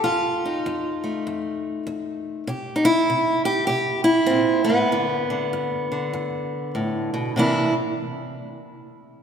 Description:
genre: acoustic country blues, solo or duo.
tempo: 98 BPM.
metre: 4/4.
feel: swing 62% on 8ths.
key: unclear.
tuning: A4 = 437 Hz.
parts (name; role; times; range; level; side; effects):
fingerpicked steel-string acoustic guitar; solo; 0.0-7.7 s; F2 to G4; -21 LUFS; equal; none.
room: wet church reverb, RT60 3.1 s.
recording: recorded in a church or concert hall.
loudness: -20 LUFS.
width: side -7 dB against mid.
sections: 0.0-7.4 A section; 7.4-9.2 B section.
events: none.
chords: 0.0 F7; 2.5 C7; 4.9 G; 7.4 C9.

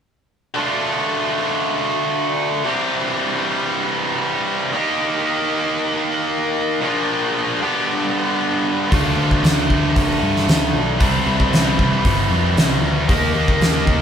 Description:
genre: classic rock.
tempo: 115 BPM.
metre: 4/4.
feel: straight.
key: unclear.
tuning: A4 = 441 Hz.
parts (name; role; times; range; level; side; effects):
tight distorted guitar; riff; 0.5-14.0 s; G2 to G4; -18 LUFS; equal; distortion.
fuzz picked electric bass; bass; 8.9-14.0 s; G1 to G2; -21 LUFS; equal; overdrive.
huge arena drum kit; drums; 8.9-14.0 s; hi-hat, kick drum, snare drum; -18 LUFS; equal; none.
room: moderate stone room reverb, RT60 1.1 s.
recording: band playing live in one room.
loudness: -16 LUFS.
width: side -8 dB against mid.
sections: 0.6-14.0 A section.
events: none.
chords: 0.6 Dm; 2.7 C; 4.7 Eb; 6.8 Bb; 7.6 G; 8.9 Dm; 11.0 C; 13.1 Eb.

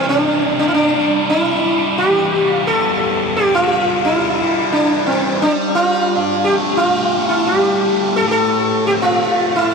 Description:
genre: rock.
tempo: 87 BPM.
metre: 4/4.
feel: straight.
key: unclear.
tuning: A4 = 440 Hz.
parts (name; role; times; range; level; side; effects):
sitar; melody; 0.0-9.7 s; C4 to A4; -15 LUFS; equal; ping-pong delay.
thick fuzz guitar; riff; 0.0-9.7 s; E2 to G4; -19 LUFS; equal; distortion, phaser.
room: wet huge ambient reverb, RT60 6.2 s.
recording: dreamy mix soaked in reverb.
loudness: -13 LUFS.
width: side -5 dB against mid.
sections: 0.0-9.7 A section.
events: none.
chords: 0.0 Cadd9; 2.7 Em7; 5.5 Gsus2; 8.2 Am.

